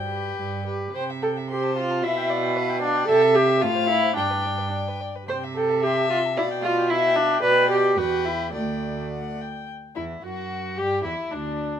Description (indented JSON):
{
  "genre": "quick classical-period movement for string quartet",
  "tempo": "111 BPM",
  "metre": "2/4",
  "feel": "rubato",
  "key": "G major from 7.4 s",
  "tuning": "A4 = 442 Hz",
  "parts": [
    { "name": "rich violin", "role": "melody", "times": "0.0-11.8 s", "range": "D4 to C6", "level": "-33 LUFS", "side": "left 8 dB", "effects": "none" },
    { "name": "rich cello", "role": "bass", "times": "0.0-11.8 s", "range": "D2 to C3", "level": "-29 LUFS", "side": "right 4 dB", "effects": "none" },
    { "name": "dark violin", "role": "second line", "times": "0.1-11.8 s", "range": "D4 to G5", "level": "-27 LUFS", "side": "left 5 dB", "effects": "none" },
    { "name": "warm viola", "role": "accompaniment", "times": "0.1-11.8 s", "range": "A3 to C5", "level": "-23 LUFS", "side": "right 1 dB", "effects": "none" }
  ],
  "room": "light reverb",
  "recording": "minimal, uncompressed stereo recording",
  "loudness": "-20 LUFS",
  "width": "side -9 dB against mid",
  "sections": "0.9-9.7 A section; 9.7-11.8 B section",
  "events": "none",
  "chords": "0.0 G; 0.9 C; 1.5 F/C; 2.0 G7/B; 3.1 C; 3.6 F/A; 4.2 G; 5.3 C; 5.8 F/C; 6.4 G7/B; 7.4 G/B; 8.0 Em; 8.5 Dsus4; 9.7 N.C.; 10.8 G5"
}